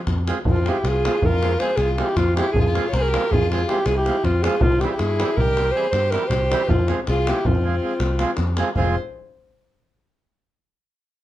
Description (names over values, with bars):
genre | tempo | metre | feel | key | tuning
balkan folk, Balkan wedding band | 318 BPM (eighths) | 11/8 | straight | F harmonic minor | A4 = 438 Hz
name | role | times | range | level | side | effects
dark alto saxophone | melody | 0.0-9.0 s | F4 to Db5 | -22 LUFS | right 1 dB | none
dark violin | second line | 0.0-9.0 s | C4 to C5 | -29 LUFS | left 4 dB | none
picked electric bass | bass | 0.1-9.0 s | F1 to G2 | -22 LUFS | equal | none
davul | percussion | 0.1-9.0 s | none | -25 LUFS | equal | none
accordion | accompaniment | 0.3-9.0 s | E3 to Ab4 | -27 LUFS | right 4 dB | none
room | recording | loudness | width
light reverb | dark, warm production | -18 LUFS | side -14 dB against mid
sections
0.5-8.8 A section; 8.8-10.8 B section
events
none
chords
0.5 Fm; 4.6 C; 6.7 Fm